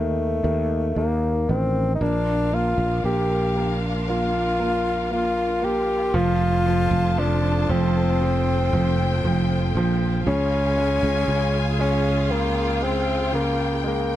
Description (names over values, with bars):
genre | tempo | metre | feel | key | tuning
pop ballad | 58 BPM | 4/4 | straight | unclear | A4 = 441 Hz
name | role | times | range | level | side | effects
dark bassoon | melody | 0.0-14.2 s | A3 to G4 | -24 LUFS | left 2 dB | none
clear upright piano | accompaniment | 0.0-14.2 s | Db3 to Bb3 | -26 LUFS | right 2 dB | none
sustaining fretless electric bass | bass | 0.0-14.2 s | F1 to Eb2 | -24 LUFS | right 1 dB | none
warm studio string section | sustained chords | 2.0-14.2 s | D4 to A5 | -30 LUFS | left 1 dB | none
room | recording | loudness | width
studio ambience | none | -19 LUFS | side -13 dB against mid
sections
0.0-14.2 A section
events
none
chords
0.0 Adim; 2.0 Bb; 6.1 F; 10.3 Db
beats
0.97 | 2.01 3.05 4.08 5.11 | 6.14 7.17 8.21 9.24 | 10.26 11.28 12.30 13.32